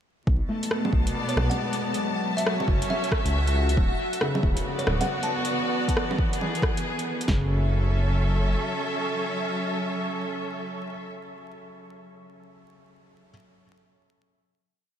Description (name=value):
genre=future garage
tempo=137 BPM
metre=4/4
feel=swing 62% on 16ths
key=F# minor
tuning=A4 = 440 Hz
part: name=clear studio string section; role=sustained chords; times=0.3-11.1 s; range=B2 to A5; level=-29 LUFS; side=equal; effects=sidechain pumping
part: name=dark detuned saw bass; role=bass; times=0.3-8.6 s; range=D1 to C#2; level=-24 LUFS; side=equal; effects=sidechain pumping
part: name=deep house drum kit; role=drums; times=0.3-7.4 s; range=kick drum, snare drum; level=-25 LUFS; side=equal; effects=overdrive, studio reverb
part: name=backwards swelling texture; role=texture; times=1.2-5.5 s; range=F#4 to F#5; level=-37 LUFS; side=equal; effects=built-in reverb
part: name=felt-muted upright piano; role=accompaniment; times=0.5-13.3 s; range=C#3 to A3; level=-34 LUFS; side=left 2 dB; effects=sidechain pumping, analog delay
part: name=deep house drum kit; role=drums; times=0.6-7.3 s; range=bongos, hi-hat, rim click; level=-31 LUFS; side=right 1 dB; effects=overdrive, studio reverb
part: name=kalimba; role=melody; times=1.3-5.5 s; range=C#5 to A5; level=-34 LUFS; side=equal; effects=ping-pong delay
room=moderate cathedral reverb, RT60 6.2 s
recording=dreamy mix soaked in reverb, vinyl crackle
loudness=-23 LUFS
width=side -9 dB against mid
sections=0.3-7.3 groove; 7.3-10.8 final chord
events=none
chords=0.3 Bm7; 2.0 F#m7; 3.8 D6; 5.5 E7; 7.3 F#m7